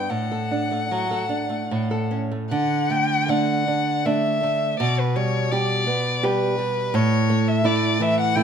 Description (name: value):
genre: romantic duo for violin and classical guitar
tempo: 73-86 BPM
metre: 3/4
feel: rubato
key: D major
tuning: A4 = 440 Hz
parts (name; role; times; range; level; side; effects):
- rich violin; melody; 0.0-8.4 s; B4 to G5; -24 LUFS; left 3 dB; none
- nylon-string guitar; accompaniment; 0.0-8.4 s; A2 to A4; -22 LUFS; right 2 dB; none
room: moderate recital hall reverb, RT60 1.4 s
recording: minimal, uncompressed stereo recording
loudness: -20 LUFS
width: side -7 dB against mid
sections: 0.0-2.5 A section; 2.5-8.4 B section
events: none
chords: 0.1 D/A; 1.7 A; 2.5 D; 4.8 G/B; 6.9 A5